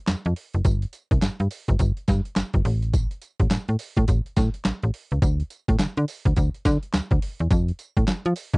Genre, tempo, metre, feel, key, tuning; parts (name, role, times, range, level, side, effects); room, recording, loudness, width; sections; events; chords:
R&B, new jack swing; 105 BPM; 4/4; swing 61% on 16ths; D minor; A4 = 440 Hz
slap-like FM bass; bass; 0.1-8.6 s; F#1 to F3; -22 LUFS; equal
boom bap sampler-style drum kit; drums; 0.1-8.6 s; handclaps, hi-hat, kick drum, snare drum, tambourine; -22 LUFS; equal; overdrive
little or no reverb; dry, close 1970s-style studio recording; -21 LUFS; side -34 dB against mid
0.0-8.6 A section